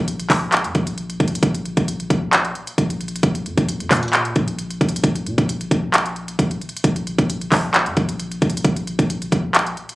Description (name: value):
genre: hip hop, trap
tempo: 133 BPM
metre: 4/4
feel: half-time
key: unclear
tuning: A4 = 440 Hz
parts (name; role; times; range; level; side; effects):
- warm 808-style bass; bass; 0.0-9.8 s; Bb1 to Bb2; -24 LUFS; equal; none
- trap drum kit; drums; 0.1-9.9 s; handclaps, hi-hat, kick drum; -18 LUFS; equal; vintage 12-bit sampler grit
room: digital ambience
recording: recorded on a phone in the room, club reverb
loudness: -17 LUFS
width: side -19 dB against mid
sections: 0.0-9.9 A section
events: none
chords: none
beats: 0.07 0.53 0.98 | 1.43 1.88 2.33 2.78 | 3.23 3.68 4.13 4.58 | 5.04 5.49 5.94 6.39 | 6.84 7.29 7.74 8.19 | 8.64 9.10 9.55